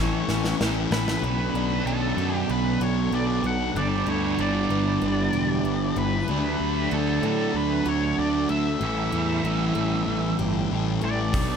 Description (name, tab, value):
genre	rock, shoegaze and dream pop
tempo	95 BPM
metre	4/4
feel	straight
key	unclear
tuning	A4 = 440 Hz
part	octave-fuzz lead guitar	melody	0.0-11.6 s	A4 to F#5	-30 LUFS	equal	distortion, analog delay
part	granular cloud pad	sustained chords	0.0-11.6 s	C#4 to C#6	-36 LUFS	equal	built-in reverb
part	picked twelve-string acoustic guitar	arpeggios	0.0-11.6 s	E3 to G4	-36 LUFS	left 5 dB	wide subtle chorus, analog delay
part	biting overdriven guitar	riff	0.0-11.6 s	G2 to E4	-28 LUFS	right 10 dB	reverse reverb
part	thick fuzz guitar	riff	0.0-11.6 s	G2 to D4	-28 LUFS	left 11 dB	distortion, wide subtle chorus
part	fuzz picked electric bass	bass	0.0-11.6 s	E1 to A2	-28 LUFS	equal	overdrive
part	big rock drum kit	drums	0.3-1.2, 11.3-11.5 s	hi-hat, kick drum, snare drum	-27 LUFS	equal	none
room	moderate booth ambience, RT60 0.2 s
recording	none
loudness	-22 LUFS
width	side -7 dB against mid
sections	0.0-1.2 A section; 1.2-11.6 B section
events	drum fill 0.0-1.2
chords	0.0 A7; 1.2 Bm7; 3.8 G6; 6.3 D; 8.8 A7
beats	0.60 | 1.23 1.86 2.50 3.13 | 3.76 4.39 5.02 5.65 | 6.29 6.92 7.55 8.18 | 8.81 9.45 10.08 10.71 | 11.34